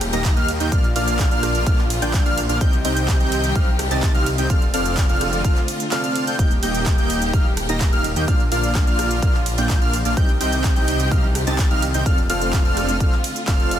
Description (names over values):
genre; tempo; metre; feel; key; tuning
EDM, festival progressive house; 127 BPM; 4/4; straight; Bb major; A4 = 440 Hz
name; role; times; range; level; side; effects
dark symphonic string section; sustained chords; 0.0-13.8 s; D3 to G4; -30 LUFS; left 2 dB; sidechain pumping
detuned saw bass; bass; 0.0-13.8 s; Eb1 to Eb2; -25 LUFS; equal; tube saturation, sidechain pumping
big-room dance drum kit; drums; 0.0-13.8 s; handclaps, hi-hat, ride cymbal, rim click; -28 LUFS; right 2 dB; none
wide unison lead; arpeggios; 0.1-13.8 s; F6 to Bb6; -26 LUFS; equal; sidechain pumping, dub echo
dense compressed supersaw; riff; 0.1-13.8 s; Bb3 to Bb5; -24 LUFS; right 1 dB; sidechain pumping, dub echo
electronic kick drum; drums; 0.2-13.6 s; none; -18 LUFS; equal; none
room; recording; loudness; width
light reverb; dense, heavily limited modern master; -17 LUFS; side -10 dB against mid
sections
0.0-13.8 A section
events
none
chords
0.0 Eb; 0.7 Bb; 2.6 Cm; 4.5 F6; 6.4 Eb; 8.3 Bb; 10.2 Cm; 12.1 F6